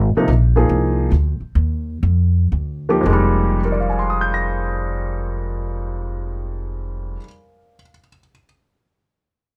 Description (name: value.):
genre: modal jazz.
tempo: 108-152 BPM.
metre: 4/4.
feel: swing 66% on 8ths.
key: F dorian.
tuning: A4 = 440 Hz.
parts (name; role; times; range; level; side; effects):
upright bass; bass; 0.0-7.2 s; F1 to F2; -21 LUFS; equal; none.
warm concert grand piano; accompaniment; 0.2-8.4 s; F2 to Bb6; -23 LUFS; equal; none.
room: little or no reverb.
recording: none.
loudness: -19 LUFS.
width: mono.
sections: 0.0-3.1 A section; 3.1-7.5 B section.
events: slowing down 0.0-3.1.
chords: 0.0 Bbadd9; 3.1 Fm9.